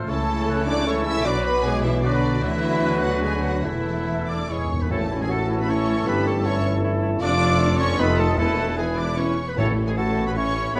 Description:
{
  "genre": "classical, dramatic, fast romantic movement for symphony orchestra",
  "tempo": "153 BPM",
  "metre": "3/4",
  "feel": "rubato",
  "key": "A major",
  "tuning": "A4 = 442 Hz",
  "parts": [
    { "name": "bright large flute ensemble", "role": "second line", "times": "0.0-10.8 s", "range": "B5 to F#6", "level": "-40 LUFS", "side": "equal", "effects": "none" },
    { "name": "clear clarinet", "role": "second line", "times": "0.0-10.8 s", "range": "E4 to F#4", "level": "-36 LUFS", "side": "equal", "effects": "none" },
    { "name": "clear oboe", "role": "second line", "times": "0.0-10.8 s", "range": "G#4 to D5", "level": "-33 LUFS", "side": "equal", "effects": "none" },
    { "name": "dark bassoon", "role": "accompaniment", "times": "0.0-10.8 s", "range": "F#3 to G4", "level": "-32 LUFS", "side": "equal", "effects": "none" },
    { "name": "clear trombone section", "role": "sustained chords", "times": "0.0-10.8 s", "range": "A2 to C#4", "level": "-36 LUFS", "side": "equal", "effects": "none" },
    { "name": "warm trumpet section", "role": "stabs", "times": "0.0-10.8 s", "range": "G#4 to C#5", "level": "-34 LUFS", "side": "equal", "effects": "none" },
    { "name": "warm symphonic cello section", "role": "bass", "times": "0.0-10.8 s", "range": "E2 to D3", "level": "-31 LUFS", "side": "equal", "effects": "none" },
    { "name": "warm symphonic double bass section", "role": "bass", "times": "0.0-10.8 s", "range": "E1 to D2", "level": "-30 LUFS", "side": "equal", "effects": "none" },
    { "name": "warm symphonic violin section", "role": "melody", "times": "0.1-10.8 s", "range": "D5 to E6", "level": "-34 LUFS", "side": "equal", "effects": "none" },
    { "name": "warm symphonic violin section", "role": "second line", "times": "0.1-10.8 s", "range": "D4 to E5", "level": "-36 LUFS", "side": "equal", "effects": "none" },
    { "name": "rich symphonic viola section", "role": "accompaniment", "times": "0.1-10.8 s", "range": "G#3 to E5", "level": "-34 LUFS", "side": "equal", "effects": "none" },
    { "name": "mellow French horn section", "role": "sustained chords", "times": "0.1-9.7 s", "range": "D3 to E4", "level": "-32 LUFS", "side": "equal", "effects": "none" },
    { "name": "timpani", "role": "percussion", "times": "4.5-5.5, 8.4-10.1 s", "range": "E2 to A2", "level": "-31 LUFS", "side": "equal", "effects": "none" },
    { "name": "warm tuba", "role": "bass", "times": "4.9-10.8 s", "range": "E1 to A1", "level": "-32 LUFS", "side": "equal", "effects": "none" }
  ],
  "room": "moderate recital hall reverb, RT60 1.5 s",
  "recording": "close, detailed microphones",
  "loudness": "-22 LUFS",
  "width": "mono",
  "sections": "0.0-4.9 A section; 4.9-10.8 B section",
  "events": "timpani fill 4.5-4.9",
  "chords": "0.1 A/C#; 1.3 Bm; 2.4 Bm/D; 3.6 Esus4; 4.5 E; 4.9 A; 6.1 A7/G; 7.2 Dm/F; 8.0 F7; 8.4 E; 9.6 A"
}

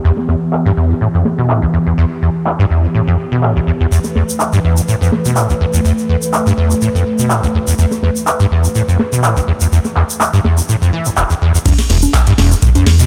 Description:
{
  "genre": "acid house",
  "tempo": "124 BPM",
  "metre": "4/4",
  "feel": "swing 53% on 16ths",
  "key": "E phrygian",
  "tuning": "A4 = 442 Hz",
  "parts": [
    { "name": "warm analog pad", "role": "sustained chords", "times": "0.0-11.6 s", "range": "E3 to B4", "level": "-21 LUFS", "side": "equal", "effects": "chorus, sidechain pumping" },
    { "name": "acid bass, saw", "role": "riff", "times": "0.0-13.1 s", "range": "E1 to E3", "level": "-15 LUFS", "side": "equal", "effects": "tube saturation, ensemble chorus" },
    { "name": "booming analog drum machine", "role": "drums", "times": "0.2-13.1 s", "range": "congas, crash cymbal, handclaps, hi-hat, snare drum", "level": "-21 LUFS", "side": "equal", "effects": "low-pass filter on hats, low-pass filter on toms, low-pass filter on perc, low-pass filter on snare, low-pass filter on cymbals" },
    { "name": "tube shaker", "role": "percussion", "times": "3.9-13.1 s", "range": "none", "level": "-26 LUFS", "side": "equal", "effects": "none" },
    { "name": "electronic kick drum", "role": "drums", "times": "11.7-12.7 s", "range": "none", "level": "-15 LUFS", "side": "equal", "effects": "none" },
    { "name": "jazz brush drum kit", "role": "drums", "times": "11.7-13.1 s", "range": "hi-hat, snare drum", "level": "-33 LUFS", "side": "equal", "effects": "none" },
    { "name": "round analog bass", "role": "bass", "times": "11.9-13.0 s", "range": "E1 to E2", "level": "-13 LUFS", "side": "equal", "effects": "sidechain pumping" }
  ],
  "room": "light reverb, digital ambience",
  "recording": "none",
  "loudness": "-14 LUFS",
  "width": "mono",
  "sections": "0.0-11.7 A section; 11.7-13.1 B section",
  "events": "filter sweep on analog synth pad 0.0-11.7; drop 11.7-13.1",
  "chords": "0.0 Em; 11.7 N.C."
}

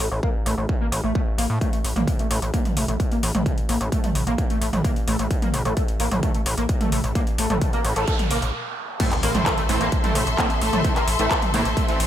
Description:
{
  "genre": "driving peak-time techno",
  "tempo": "130 BPM",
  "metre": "4/4",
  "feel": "straight",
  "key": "A phrygian",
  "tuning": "A4 = 440 Hz",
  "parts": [
    { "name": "overdriven synth lead", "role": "riff", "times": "0.0-11.9 s", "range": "A3 to Bb3", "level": "-27 LUFS", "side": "equal", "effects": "ensemble chorus, sidechain pumping, ping-pong delay" },
    { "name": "gritty driven synth bass", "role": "bass", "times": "0.0-12.1 s", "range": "A1 to A2", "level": "-24 LUFS", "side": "equal", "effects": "sidechain pumping" },
    { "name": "techno drum kit", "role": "drums", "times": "0.0-12.1 s", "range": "crash cymbal, handclaps, hi-hat, toms", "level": "-26 LUFS", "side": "equal", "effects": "sidechain pumping on hats, small room ambience, sidechain pumping on toms, sidechain pumping on cymbals, gated reverb" },
    { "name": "electronic kick drum", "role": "drums", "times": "0.2-11.9 s", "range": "none", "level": "-23 LUFS", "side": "equal", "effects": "distortion, small room ambience" },
    { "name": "noise sweep and impact", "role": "sound effects", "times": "7.7-10.8 s", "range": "none", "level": "-32 LUFS", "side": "right 2 dB", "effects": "none" },
    { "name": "rave stab", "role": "stabs", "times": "9.0-12.1 s", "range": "E3 to C4", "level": "-28 LUFS", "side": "right 4 dB", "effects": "chorus, built-in reverb, sidechain pumping, ping-pong delay" },
    { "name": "clear symphonic string section", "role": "texture", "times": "9.0-12.1 s", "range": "A4 to C6", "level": "-27 LUFS", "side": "left 2 dB", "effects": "sidechain pumping" }
  ],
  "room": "light reverb, digital ambience",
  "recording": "bright 1980s-style digital production",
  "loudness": "-20 LUFS",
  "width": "side -11 dB against mid",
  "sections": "0.0-9.0 A section; 9.0-12.1 B section",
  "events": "filter sweep on analog synth lead 0.0-9.0; noise sweep 7.7-9.0; stop 8.5-9.0; drop 9.0-12.1; impact 9.0-10.8",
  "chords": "0.0 N.C.; 9.0 Am"
}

